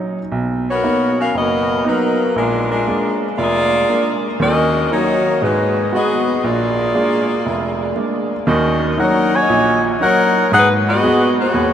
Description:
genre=jazz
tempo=118 BPM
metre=4/4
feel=swing 69% on 8ths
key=Eb minor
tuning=A4 = 440 Hz
part: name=clear baby grand piano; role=accompaniment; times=0.0-11.7 s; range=F1 to Gb4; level=-19 LUFS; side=right 2 dB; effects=none
part: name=warm saxophone section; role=melody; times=0.7-11.7 s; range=F#3 to Ab5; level=-15 LUFS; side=left 2 dB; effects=none
room=wet huge ambient reverb, RT60 7.1 s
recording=in a vast, echoing space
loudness=-14 LUFS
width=side -9 dB against mid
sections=0.0-8.5 A section; 8.5-11.7 B section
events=none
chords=0.3 Bmaj7; 2.4 Bb7; 4.4 Ebm7; 5.4 Abm7; 6.4 Bb7; 8.5 Ebm7; 10.5 Abm7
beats=| 0.32 0.83 1.34 1.85 | 2.36 2.87 3.38 3.88 | 4.39 4.90 5.41 5.92 | 6.43 6.94 7.46 7.96 | 8.47 8.98 9.49 10.01 | 10.52 11.03 11.54

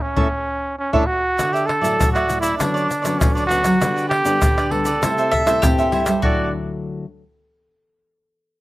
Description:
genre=samba and choro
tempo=99 BPM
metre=4/4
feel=straight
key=D major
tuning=A4 = 440 Hz
part: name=mellow trumpet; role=melody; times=0.0-6.5 s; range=C#4 to D5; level=-20 LUFS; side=right 1 dB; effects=none
part: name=cavaquinho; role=accompaniment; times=0.2-6.5 s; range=D4 to E5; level=-24 LUFS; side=right 3 dB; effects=slapback echo
part: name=nylon-string guitar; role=accompaniment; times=0.2-7.0 s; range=G2 to E4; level=-26 LUFS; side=left 3 dB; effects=none
part: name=nylon-string guitar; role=bass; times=0.2-6.5 s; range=A2 to C4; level=-26 LUFS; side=right 1 dB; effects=none
part: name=surdo, tube shaker, pandeiro and tamborim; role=percussion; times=0.2-6.4 s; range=none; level=-22 LUFS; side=equal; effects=none
part: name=mandolin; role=second line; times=5.3-6.5 s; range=F#4 to E5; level=-22 LUFS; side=left 2 dB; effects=slapback echo
room=little or no reverb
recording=recorded outdoors, with no room sound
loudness=-16 LUFS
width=side -17 dB against mid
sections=0.0-1.4 A section; 1.4-6.2 B section; 6.2-8.6 C section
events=band accent 0.0-1.4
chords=0.0 A; 1.4 Dadd9; 2.6 Bmadd9/D; 3.8 G/D; 5.0 C6; 6.2 Dadd9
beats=0.18 0.79 | 1.39 2.00 2.60 3.21 | 3.81 4.42 5.02 5.63 | 6.23 6.84

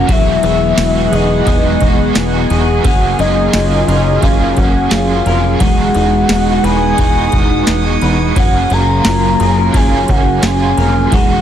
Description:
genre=dream pop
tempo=87 BPM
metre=4/4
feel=straight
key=unclear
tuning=A4 = 437 Hz
part: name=soft octave-layered synth lead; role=melody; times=0.0-11.4 s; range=D#5 to Bb5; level=-17 LUFS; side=left 2 dB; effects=chorus, tremolo, tape echo, plate reverb
part: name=overdriven electric guitar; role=accompaniment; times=0.0-11.4 s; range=E3 to F#4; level=-21 LUFS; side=right 6 dB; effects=tremolo, ensemble chorus, plate reverb
part: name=warm analog pad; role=sustained chords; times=0.0-11.4 s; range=Db3 to G#4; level=-18 LUFS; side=equal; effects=chorus, plate reverb
part: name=electric guitar at the edge of break-up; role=arpeggios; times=0.0-11.4 s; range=F#3 to B4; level=-19 LUFS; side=left 2 dB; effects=lush chorus, tape echo, plate reverb
part: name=plucky analog bass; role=bass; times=0.0-11.4 s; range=E1 to Gb1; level=-16 LUFS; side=equal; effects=none
part: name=drifting glass-harmonics texture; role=texture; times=0.0-8.7 s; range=F#5 to G#6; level=-26 LUFS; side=right 3 dB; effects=chorus, built-in reverb, tape echo, plate reverb
part: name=booming analog drum machine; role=drums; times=0.1-11.3 s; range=kick drum, ride cymbal, snare drum, tambourine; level=-16 LUFS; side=equal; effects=none
room=moderate studio reverb, RT60 0.7 s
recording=dense, heavily limited modern master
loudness=-10 LUFS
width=side -10 dB against mid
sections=0.0-11.4 A section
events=none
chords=0.1 Emaj9; 2.8 Gbmaj7; 5.6 Emaj9; 8.4 Gbmaj7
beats=| 0.09 0.78 1.47 2.15 | 2.85 3.53 4.22 4.91 | 5.60 6.29 6.98 7.67 | 8.36 9.05 9.74 10.43 | 11.12

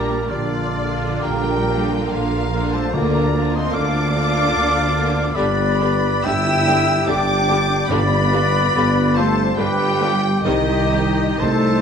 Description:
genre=classical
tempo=60-75 BPM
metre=3/4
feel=rubato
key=G major from 5.4 s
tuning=A4 = 441 Hz
part: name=warm symphonic violin section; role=melody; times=0.0-11.8 s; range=D5 to E6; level=-25 LUFS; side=left 2 dB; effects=none
part: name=large flute ensemble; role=second line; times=0.0-11.8 s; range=F4 to G5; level=-25 LUFS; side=left 3 dB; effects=none
part: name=warm oboe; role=second line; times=0.0-11.8 s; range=F4 to G5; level=-26 LUFS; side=equal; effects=none
part: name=warm symphonic violin section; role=second line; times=0.0-11.5 s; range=C4 to G4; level=-31 LUFS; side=left 3 dB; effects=none
part: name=rich symphonic viola section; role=accompaniment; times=0.0-11.5 s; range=D3 to Bb3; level=-28 LUFS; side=right 2 dB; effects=none
part: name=mellow French horn section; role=sustained chords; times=0.0-11.8 s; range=G3 to G4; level=-28 LUFS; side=left 3 dB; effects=none
part: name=mellow trumpet section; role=stabs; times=0.0-11.8 s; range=D4 to E5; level=-26 LUFS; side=equal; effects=none
part: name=dark chamber cello section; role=bass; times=0.0-11.8 s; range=D3 to E4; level=-25 LUFS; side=equal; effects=none
part: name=mellow tuba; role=bass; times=0.0-11.8 s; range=G1 to D2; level=-23 LUFS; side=right 2 dB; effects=none
part: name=rich symphonic double bass section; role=bass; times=0.0-11.8 s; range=G1 to D2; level=-25 LUFS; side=right 2 dB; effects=none
part: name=timpani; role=percussion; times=2.9-9.1 s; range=G2 to D3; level=-28 LUFS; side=left 2 dB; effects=none
room=wet recital hall reverb, RT60 1.5 s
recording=dark, warm production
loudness=-16 LUFS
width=side -7 dB against mid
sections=0.0-11.8 A section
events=none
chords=0.3 Bb; 2.9 Bb/D; 5.4 G; 7.9 G7; 10.4 Cm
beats=| 0.30 1.24 2.10 | 2.94 3.75 4.55 | 5.36 6.25 7.08 | 7.90 8.75 9.59 | 10.45 11.40

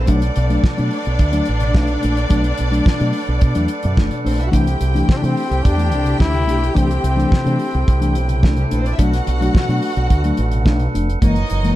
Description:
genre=disco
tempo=108 BPM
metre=4/4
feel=straight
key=B phrygian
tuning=A4 = 440 Hz
part: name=rich studio string section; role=second line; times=0.0-11.8 s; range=G3 to G5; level=-25 LUFS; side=left 1 dB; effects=none
part: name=tonewheel organ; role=sustained chords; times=0.0-11.8 s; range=E3 to G5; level=-28 LUFS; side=right 4 dB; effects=overdrive, stopped rotary speaker
part: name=fingered electric bass with an envelope filter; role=bass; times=0.0-11.7 s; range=E#1 to C3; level=-18 LUFS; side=equal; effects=none
part: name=mellow tine electric piano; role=accompaniment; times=0.1-11.8 s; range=B2 to D4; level=-21 LUFS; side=left 2 dB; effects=none
part: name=damped 70s drum kit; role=drums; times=0.1-11.8 s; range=hi-hat, kick drum, snare drum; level=-16 LUFS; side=equal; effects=none
part: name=brilliant trombone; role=melody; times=5.1-8.4 s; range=C4 to E4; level=-23 LUFS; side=left 4 dB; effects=none
room=studio reverb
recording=dark, warm production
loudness=-14 LUFS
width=side -15 dB against mid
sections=0.0-11.8 A section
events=none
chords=0.1 Bm7; 4.5 C6; 9.0 Bm7; 11.2 F#7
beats=| 0.08 0.64 1.19 1.75 | 2.31 2.86 3.42 3.98 | 4.53 5.09 5.65 6.20 | 6.76 7.32 7.87 8.43 | 8.99 9.54 10.10 10.66 | 11.22

